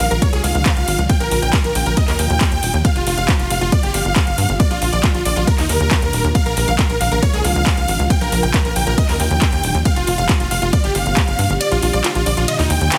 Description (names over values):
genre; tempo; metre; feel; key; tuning
uplifting trance; 137 BPM; 4/4; straight; Bb major; A4 = 445 Hz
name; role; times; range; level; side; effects
supersaw chords; melody; 0.0-13.0 s; Eb4 to G5; -23 LUFS; equal; sidechain pumping, tape echo
shimmering ambient pad; sustained chords; 0.0-13.0 s; Bb2 to F4; -28 LUFS; equal; chorus, built-in reverb, phaser, sidechain pumping
tight sequencer bass; bass; 0.0-12.9 s; Eb1 to G2; -22 LUFS; equal; sidechain pumping
big-room dance drum kit; drums; 0.0-13.0 s; handclaps, hi-hat, ride cymbal; -25 LUFS; equal; sidechain pumping on hats, studio reverb, sidechain pumping on cymbals
electronic kick drum; drums; 0.2-11.3 s; none; -19 LUFS; equal; overdrive, studio reverb
room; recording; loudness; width
digital ambience; heavily compressed radio sound, multiband compression; -17 LUFS; mono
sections
0.0-13.0 A section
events
kick drops out 11.6-13.0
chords
0.2 Db; 1.1 Bb; 2.0 Eb; 2.8 F; 3.7 Gm; 4.6 Bb; 5.5 Eb; 6.3 Bb; 7.2 Db; 8.1 Bb; 9.0 Eb; 9.9 F; 10.7 Gm; 11.6 Bb; 12.5 Eb